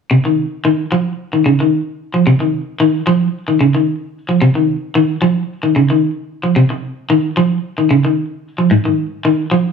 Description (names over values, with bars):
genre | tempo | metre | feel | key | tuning
afrobeat | 112 BPM | 4/4 | straight | unclear | A4 = 442 Hz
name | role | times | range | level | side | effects
electric guitar at the edge of break-up | arpeggios | 0.1-9.7 s | Ab2 to F3 | -12 LUFS | equal | tremolo
room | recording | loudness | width
wet studio reverb, RT60 1.0 s | band playing live in one room | -13 LUFS | side -6 dB against mid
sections
0.1-9.7 A section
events
none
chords
none